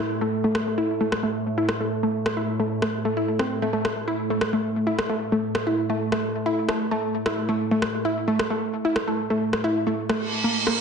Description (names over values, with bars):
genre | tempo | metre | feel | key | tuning
driving peak-time techno | 132 BPM | 4/4 | straight | unclear | A4 = 439 Hz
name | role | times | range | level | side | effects
wide unison pluck | riff | 0.0-10.7 s | A3 to E4 | -24 LUFS | equal | ping-pong delay
deep dark ambient pad | drone | 0.0-10.8 s | A2 to A3 | -29 LUFS | right 1 dB | chorus, built-in reverb
downlifter and reverse cymbal | sound effects | 0.0-0.1, 10.2-10.8 s | none | -24 LUFS | right 4 dB | none
electronic rim click | drums | 0.5-10.8 s | none | -28 LUFS | equal | overdrive
room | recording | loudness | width
wet digital room reverb, RT60 1.1 s | heavily compressed radio sound, multiband compression, nothing above 10.5 kHz | -22 LUFS | side -6 dB against mid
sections
0.0-10.8 A section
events
reverse cymbal 10.2-10.8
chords
none